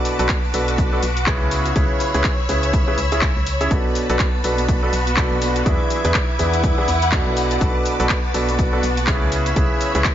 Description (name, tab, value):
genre	piano house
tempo	123 BPM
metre	4/4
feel	swing 58% on 16ths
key	B dorian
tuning	A4 = 440 Hz
part	string machine, violins	sustained chords	0.0-10.1 s	B4 to G#6	-27 LUFS	equal	ensemble chorus, sidechain pumping
part	clear concert grand piano	riff	0.0-10.1 s	B2 to E5	-22 LUFS	right 1 dB	vintage 12-bit sampler grit, sidechain pumping, dub echo
part	warm studio string section	texture	0.0-10.1 s	B3 to F#5	-26 LUFS	left 2 dB	sidechain pumping
part	house drum kit	drums	0.1-10.1 s	handclaps, hi-hat, shaker	-25 LUFS	left 1 dB	none
part	organ-like FM bass	bass	0.2-10.0 s	B1 to E2	-23 LUFS	equal	tube saturation, sidechain pumping
part	electronic kick drum	drums	0.3-10.1 s	none	-21 LUFS	equal	none
room	little or no reverb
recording	nothing above 7.5 kHz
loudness	-16 LUFS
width	side -11 dB against mid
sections	0.0-10.1 A section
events	none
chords	0.0 Bm7; 1.5 C#m7; 3.7 Bm7; 5.7 E7; 7.4 Bm7; 9.3 C#m7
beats	0.29 0.78 1.27 | 1.76 2.25 2.73 3.22 | 3.71 4.20 4.68 5.17 | 5.66 6.15 6.64 7.12 | 7.61 8.10 8.59 9.07 | 9.56 10.05